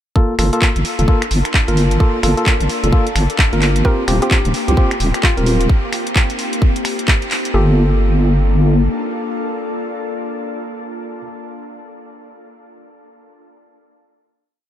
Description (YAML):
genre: UK garage, two-step garage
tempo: 130 BPM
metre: 4/4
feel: swing 61% on 16ths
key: G minor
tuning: A4 = 439 Hz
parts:
  - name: ethereal airy pad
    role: sustained chords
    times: 1.0-11.2 s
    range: Bb3 to A5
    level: -25 LUFS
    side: left 2 dB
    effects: ensemble chorus, built-in reverb, phaser, sidechain pumping
  - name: tine electric piano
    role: stabs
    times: 0.2-11.2 s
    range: Bb3 to Bb4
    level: -21 LUFS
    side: equal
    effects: ping-pong delay
  - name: electronic kick drum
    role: drums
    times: 0.2-7.2 s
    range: none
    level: -14 LUFS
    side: equal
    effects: none
  - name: deep soft wobble bass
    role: bass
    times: 0.4-8.9 s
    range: Eb1 to C2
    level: -14 LUFS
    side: equal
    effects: chorus
  - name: garage drum kit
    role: drums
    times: 0.4-7.5 s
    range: finger snaps, handclaps, hi-hat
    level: -21 LUFS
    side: equal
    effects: none
  - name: hollow square pluck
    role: melody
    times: 3.8-11.2 s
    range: F4 to Bb4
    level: -28 LUFS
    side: left 1 dB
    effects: none
room: light reverb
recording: none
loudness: -13 LUFS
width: side -11 dB against mid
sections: 0.2-7.5 groove; 7.5-11.2 final chord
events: none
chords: 0.2 Gm9; 3.8 Eb6; 7.5 Gm9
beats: | 0.16 0.62 1.08 1.54 | 2.00 2.46 2.93 3.39 | 3.85 4.31 4.77 5.23 | 5.70 6.16 6.62 7.08 | 7.54 8.00 8.46 8.93 | 9.39 9.85 10.31 10.77